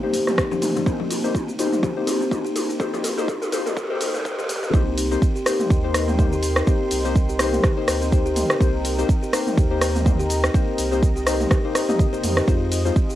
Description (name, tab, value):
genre	afro house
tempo	124 BPM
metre	4/4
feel	swing 56% on 16ths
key	C minor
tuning	A4 = 439 Hz
part	dark analog pad	sustained chords	0.1-13.2 s	Bb3 to C6	-30 LUFS	right 1 dB	chorus, sidechain pumping, cassette tape
part	buzzing kalimba	arpeggios	0.0-13.2 s	C4 to G4	-28 LUFS	right 2 dB	sidechain pumping, low-pass filter, cassette tape, tape echo
part	deep mellow chord stab	stabs	0.0-12.9 s	Ab3 to Eb5	-26 LUFS	left 6 dB	chorus, sidechain pumping, cassette tape, tape echo
part	deep house drum kit	drums	0.1-13.2 s	hi-hat, rim click, shaker, toms	-25 LUFS	right 1 dB	cassette tape
part	congas	percussion	0.1-4.7 s	none	-33 LUFS	left 9 dB	none
part	electronic kick drum	drums	0.4-13.1 s	none	-20 LUFS	right 1 dB	cassette tape
part	warm sub bass	bass	4.7-12.9 s	G1 to F2	-25 LUFS	right 1 dB	tube saturation, sidechain pumping
room	light reverb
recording	home recording on cassette, high-pass filter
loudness	-18 LUFS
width	side -13 dB against mid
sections	0.0-4.7 A section; 4.7-13.2 B section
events	build-up 0.0-4.7; drum fill 0.0-4.7; filter sweep on kalimba 0.0-4.7; filter sweep on analog synth pad 0.0-4.7; filter sweep 0.0-4.7; drop 4.7-13.2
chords	0.0 Cm7; 12.5 Fm7